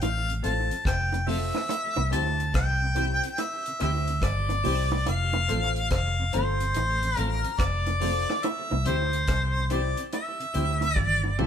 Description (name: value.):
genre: roots reggae.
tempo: 71 BPM.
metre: 4/4.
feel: swing 64% on 16ths.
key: F major.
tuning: A4 = 440 Hz.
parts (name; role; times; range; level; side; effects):
warm harmonica; melody; 0.0-11.5 s; A4 to A5; -28 LUFS; left 1 dB; none.
vintage muted fingered electric bass; bass; 0.0-11.5 s; F1 to D2; -27 LUFS; equal; none.
deep reggae drum kit; drums; 0.0-11.5 s; hi-hat, kick drum, rim click, toms; -31 LUFS; equal; none.
bongos; percussion; 0.0-11.5 s; none; -35 LUFS; right 3 dB; dub echo.
tonewheel organ; accompaniment; 0.3-11.5 s; F2 to C4; -38 LUFS; right 1 dB; overdrive, slow rotary speaker, dub echo.
bright upright piano; stabs; 0.4-11.5 s; C4 to C5; -34 LUFS; left 5 dB; none.
room: light reverb.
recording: band playing live in one room.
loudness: -24 LUFS.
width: side -8 dB against mid.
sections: 0.0-11.5 A section.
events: drum fill 11.0-11.5.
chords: 0.0 F; 1.7 C; 5.1 F; 8.4 C.